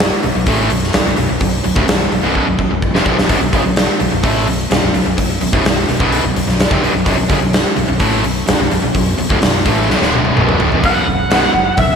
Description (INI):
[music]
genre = hard rock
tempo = 127 BPM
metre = 4/4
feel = straight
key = B minor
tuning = A4 = 437 Hz
[part]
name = distorted electric guitar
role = riff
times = 0.0-12.0 s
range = B1 to A3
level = -19 LUFS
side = left 9 dB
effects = overdrive
[part]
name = distorted electric guitar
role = riff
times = 0.0-12.0 s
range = B1 to A3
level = -19 LUFS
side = right 8 dB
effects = overdrive
[part]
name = fingered electric bass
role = bass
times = 0.0-12.0 s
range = B0 to A1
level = -22 LUFS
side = equal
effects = none
[part]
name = big rock drum kit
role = drums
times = 0.0-11.9 s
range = hi-hat, kick drum, snare drum, toms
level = -15 LUFS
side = equal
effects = none
[part]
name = biting lead guitar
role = melody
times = 10.9-12.0 s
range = E5 to F#5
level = -15 LUFS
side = right 1 dB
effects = overdrive, slapback echo
[sound]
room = moderate lush hall reverb, RT60 2.0 s, studio reverb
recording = none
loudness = -12 LUFS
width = side -6 dB against mid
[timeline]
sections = 0.0-10.8 A section; 10.8-12.0 B section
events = drum fill 2.3-3.3, 9.9-10.8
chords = 0.0 Bm